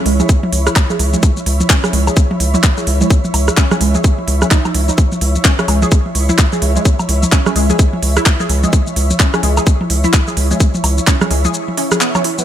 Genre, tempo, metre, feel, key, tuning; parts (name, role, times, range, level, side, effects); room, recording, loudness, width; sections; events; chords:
minimal techno; 128 BPM; 4/4; swing 60% on 16ths; C# minor; A4 = 442 Hz
flickering grainy texture; texture; 0.0-12.4 s; E5; -29 LUFS; right 3 dB; built-in reverb, sidechain pumping
granular cloud pad; texture; 0.0-12.4 s; E4 to B5; -24 LUFS; equal; built-in reverb, sidechain pumping
resonant blip pluck; riff; 0.1-12.4 s; G#3 to G#4; -21 LUFS; right 1 dB; analog chorus, sidechain pumping, dub echo
rubbery square bass; bass; 0.1-11.5 s; C#2; -14 LUFS; equal; sidechain pumping
garage drum kit; drums; 0.1-12.4 s; handclaps, hi-hat, shaker; -19 LUFS; equal
booming analog drum machine; percussion; 0.2-12.4 s; congas, rim click, toms, woodblock; -20 LUFS; right 1 dB; dub echo
electronic kick drum; drums; 0.3-11.2 s; -12 LUFS; equal; overdrive
little or no reverb; -11 LUFS; side -10 dB against mid
0.0-12.4 A section
break 11.5-12.4
0.0 C#m7